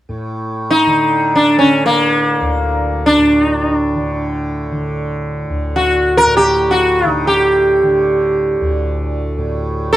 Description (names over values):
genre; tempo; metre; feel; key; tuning
indian classical; free time; none; none; D raga bhairav; A4 = 440 Hz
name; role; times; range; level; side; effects
tanpura; drone; 0.1-10.0 s; D2 to D3; -20 LUFS; equal; none
sitar; melody; 0.7-10.0 s; Bb3 to Bb4; -12 LUFS; equal; none
room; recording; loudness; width
moderate booth ambience, RT60 0.3 s; dry, close 1970s-style studio recording, faint mains hum; -12 LUFS; side -14 dB against mid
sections
0.1-10.0 A section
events
none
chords
none